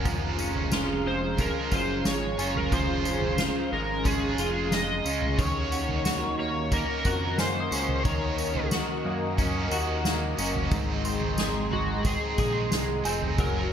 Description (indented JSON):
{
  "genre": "dream pop",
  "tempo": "90 BPM",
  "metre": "4/4",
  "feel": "straight",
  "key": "unclear",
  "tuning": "A4 = 440 Hz",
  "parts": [
    { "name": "crunchy overdriven guitar", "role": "accompaniment", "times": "0.0-13.7 s", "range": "Gb2 to Gb4", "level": "-34 LUFS", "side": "right 6 dB", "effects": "harmonic tremolo, lush chorus" },
    { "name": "hollow soft pad", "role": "sustained chords", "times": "0.0-13.7 s", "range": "Db4 to Eb6", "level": "-33 LUFS", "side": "right 1 dB", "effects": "chorus" },
    { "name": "semi-hollow electric guitar", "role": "arpeggios", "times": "0.0-13.7 s", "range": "Ab2 to Ab4", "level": "-33 LUFS", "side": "left 2 dB", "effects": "ensemble chorus, ping-pong delay" },
    { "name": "fat analog bass", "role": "bass", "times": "0.0-13.7 s", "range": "F1 to Gb2", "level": "-32 LUFS", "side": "equal", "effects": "none" },
    { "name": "soft synth bell", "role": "texture", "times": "0.0-13.7 s", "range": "F5 to Eb6", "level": "-41 LUFS", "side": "right 2 dB", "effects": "chorus, phaser, ping-pong delay" },
    { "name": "soft-mallet drum kit", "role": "drums", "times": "0.1-13.5 s", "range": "kick drum, snare drum, tambourine, toms", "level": "-29 LUFS", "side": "equal", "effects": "gated reverb" },
    { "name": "overdriven slide guitar", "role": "melody", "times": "1.1-13.7 s", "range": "Gb4 to Eb5", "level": "-31 LUFS", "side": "left 1 dB", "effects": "analog chorus, ping-pong delay" }
  ],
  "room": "moderate plate reverb, RT60 1.4 s, small room ambience",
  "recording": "bright 1980s-style digital production",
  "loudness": "-24 LUFS",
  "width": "side -8 dB against mid",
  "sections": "0.0-13.7 A section",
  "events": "none",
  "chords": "0.0 Db/F; 5.4 Ebm7; 10.7 Ab7"
}